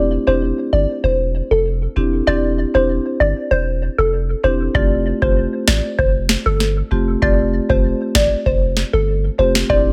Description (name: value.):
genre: dancehall.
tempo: 97 BPM.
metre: 4/4.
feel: straight.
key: F major.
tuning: A4 = 440 Hz.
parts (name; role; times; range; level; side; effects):
hollow square pluck; melody; 0.0-9.9 s; A4 to D5; -21 LUFS; equal; chorus, tape echo.
marimba with medium mallets; accompaniment; 0.0-9.9 s; A3 to G4; -24 LUFS; equal; none.
punchy sub bass; bass; 0.0-9.9 s; E1 to A1; -22 LUFS; equal; none.
booming analog drum machine; drums; 4.7-9.9 s; kick drum, snare drum; -20 LUFS; equal; overdrive.
room: digital ambience.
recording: none.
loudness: -17 LUFS.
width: mono.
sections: 0.0-9.9 A section.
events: none.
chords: 0.0 Cadd9/E; 4.7 Fadd9.